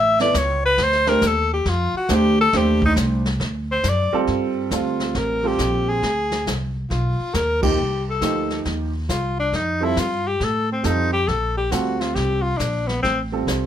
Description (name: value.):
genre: jazz, small-group swing and bop.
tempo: 137 BPM.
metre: 4/4.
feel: swing 66% on 8ths.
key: G minor.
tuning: A4 = 441 Hz.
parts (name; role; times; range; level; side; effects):
breathy alto saxophone; melody; 0.0-13.2 s; B3 to E5; -21 LUFS; left 2 dB; none.
upright bass; bass; 0.0-13.7 s; A1 to A2; -24 LUFS; equal; none.
warm concert grand piano; accompaniment; 0.2-13.7 s; F3 to E5; -22 LUFS; right 4 dB; none.
jazz brush drum kit; drums; 0.2-13.7 s; brushed snare drum, hi-hat, kick drum, ride cymbal, snare drum; -28 LUFS; left 1 dB; none.
room: moderate studio reverb, RT60 0.6 s.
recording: none.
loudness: -18 LUFS.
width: side -10 dB against mid.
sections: 0.0-4.3 A section; 4.3-13.7 B section.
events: alto saxophone solo 0.0-4.3; band accent 7.6.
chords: 0.0 A; 0.8 Dm7; 2.5 Am7b5; 3.4 D7; 4.3 Gm9; 6.0 Csus2; 6.9 G7alt; 7.8 Cm9; 9.5 F; 11.3 Bbmaj9; 13.0 Fadd9/A.